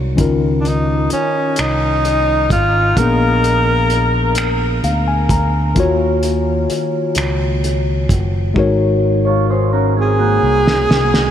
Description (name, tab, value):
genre	slow six-eight R&B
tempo	43 BPM (dotted quarters)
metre	6/8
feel	straight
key	Db major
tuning	A4 = 440 Hz
part	tine electric piano	accompaniment	0.0-11.3 s	Bb2 to Bb5	-19 LUFS	left 4 dB	none
part	picked electric bass with an envelope filter	bass	0.0-11.3 s	Gb1 to Eb2	-18 LUFS	right 1 dB	none
part	cloth-damped thuddy drum kit	drums	0.2-11.3 s	finger snaps, hi-hat, kick drum, snare drum	-20 LUFS	equal	none
part	breathy tenor saxophone	melody	0.6-4.8, 10.0-11.3 s	Db4 to Bb4	-17 LUFS	equal	ping-pong delay
part	mellow electric guitar	second line	9.2-11.3 s	Bb3 to Db5	-19 LUFS	right 4 dB	phaser, ping-pong delay
room	moderate huge ambient reverb, RT60 7.3 s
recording	dreamy mix soaked in reverb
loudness	-13 LUFS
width	side -10 dB against mid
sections	0.0-11.3 A section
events	tine electric piano fill 4.4-5.8; drum fill 8.6-11.3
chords	0.2 Db69; 3.0 Bb7b9; 5.8 Ebm9; 8.6 Ab9sus4